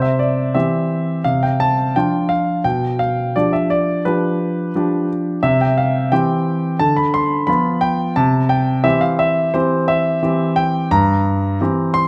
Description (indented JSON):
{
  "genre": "classical-period piano sonatina",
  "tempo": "87 BPM",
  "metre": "4/4",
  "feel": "straight",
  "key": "C major",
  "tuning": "A4 = 440 Hz",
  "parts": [
    { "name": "clear grand piano", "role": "solo", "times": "0.0-12.1 s", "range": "G2 to C6", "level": "-17 LUFS", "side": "equal", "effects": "none" }
  ],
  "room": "moderate recital hall reverb, RT60 1.3 s",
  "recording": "close, detailed microphones",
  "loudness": "-17 LUFS",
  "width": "mono",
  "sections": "0.0-12.1 A section",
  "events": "none",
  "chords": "0.0 C; 1.2 Dm7/C; 2.6 G7/B; 5.4 C; 6.8 Bdim/D; 8.2 C; 10.9 C7/G"
}